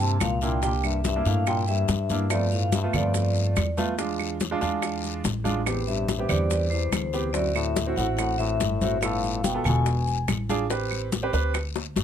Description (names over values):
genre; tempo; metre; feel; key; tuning
Afro-Cuban jazz; 143 BPM; 4/4; straight; G mixolydian; A4 = 440 Hz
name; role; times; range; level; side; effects
vibraphone with medium hard mallets; melody; 0.0-10.2 s; C5 to A5; -29 LUFS; left 1 dB; none
trombone with metal mute; second line; 0.0-10.2 s; E2 to C3; -31 LUFS; left 5 dB; none
clear grand piano; accompaniment; 0.0-11.5 s; G#3 to B4; -29 LUFS; right 4 dB; none
upright bass; bass; 0.0-12.0 s; E1 to G2; -27 LUFS; equal; none
congas; percussion; 0.0-12.0 s; none; -31 LUFS; left 2 dB; none
maracas; percussion; 0.0-12.0 s; none; -39 LUFS; right 10 dB; none
bongos; percussion; 0.2-12.0 s; none; -33 LUFS; left 10 dB; none
claves; percussion; 0.2-11.8 s; none; -34 LUFS; right 11 dB; none
guiro; percussion; 0.2-12.0 s; none; -38 LUFS; left 9 dB; none
room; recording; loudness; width
little or no reverb; close, detailed microphones; -23 LUFS; side -9 dB against mid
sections
0.0-12.0 A section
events
drum fill 11.8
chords
0.0 C9; 2.3 G9; 4.0 E7b9; 5.7 Am7; 7.3 D9; 9.0 G9; 9.9 E7b9; 10.7 Am7